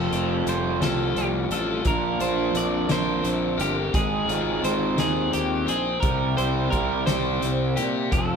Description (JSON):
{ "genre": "indie rock", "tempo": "58 BPM (dotted quarters)", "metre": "6/8", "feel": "straight", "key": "unclear", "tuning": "A4 = 440 Hz", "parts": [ { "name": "electric guitar at the edge of break-up", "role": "melody", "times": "0.0-8.4 s", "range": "G4 to D5", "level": "-28 LUFS", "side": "right 3 dB", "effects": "none" }, { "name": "crunchy overdriven guitar", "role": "riff", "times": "0.0-8.4 s", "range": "C3 to C5", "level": "-27 LUFS", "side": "left 6 dB", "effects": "none" }, { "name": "overdriven electric guitar", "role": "riff", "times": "0.0-8.4 s", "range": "F3 to A4", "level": "-29 LUFS", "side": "right 6 dB", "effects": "none" }, { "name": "fuzz fingered electric bass", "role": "bass", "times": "0.0-8.4 s", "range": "F1 to Bb2", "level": "-29 LUFS", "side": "equal", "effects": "overdrive" }, { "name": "loose indie drum kit", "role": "drums", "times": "0.1-8.3 s", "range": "hi-hat, kick drum, snare drum", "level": "-29 LUFS", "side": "equal", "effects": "none" } ], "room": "wet stone room reverb, RT60 1.1 s", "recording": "band playing live in one room", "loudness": "-21 LUFS", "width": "side -6 dB against mid", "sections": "0.0-8.4 A section", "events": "none", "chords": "0.0 Fadd9; 1.9 Bbadd9; 3.9 Ab6; 6.0 C" }